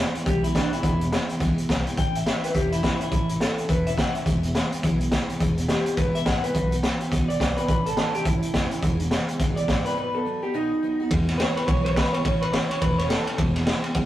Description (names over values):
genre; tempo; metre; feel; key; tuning
rockabilly; 210 BPM; 4/4; swing 61% on 8ths; E major; A4 = 440 Hz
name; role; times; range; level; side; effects
electric guitar through a small old amp; melody; 0.0-13.4 s; D4 to G5; -28 LUFS; equal; spring reverb
picked steel-string acoustic guitar; accompaniment; 0.0-14.1 s; E2 to F#4; -31 LUFS; left 1 dB; none
upright bass; bass; 0.1-14.1 s; E1 to E2; -31 LUFS; equal; none
raw garage drum kit; drums; 0.1-14.0 s; hi-hat, kick drum, ride cymbal, snare drum; -23 LUFS; equal; none
room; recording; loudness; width
light reverb; rough rehearsal-room recording, tube saturation; -21 LUFS; side -14 dB against mid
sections
0.0-11.1 A section; 11.1-14.1 B section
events
break 10.0-11.1; clean electric guitar solo 11.1-14.1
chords
0.0 E; 2.0 A; 4.3 E; 6.5 B; 7.7 A; 8.8 E; 10.0 B; 11.1 E; 12.2 A; 13.4 E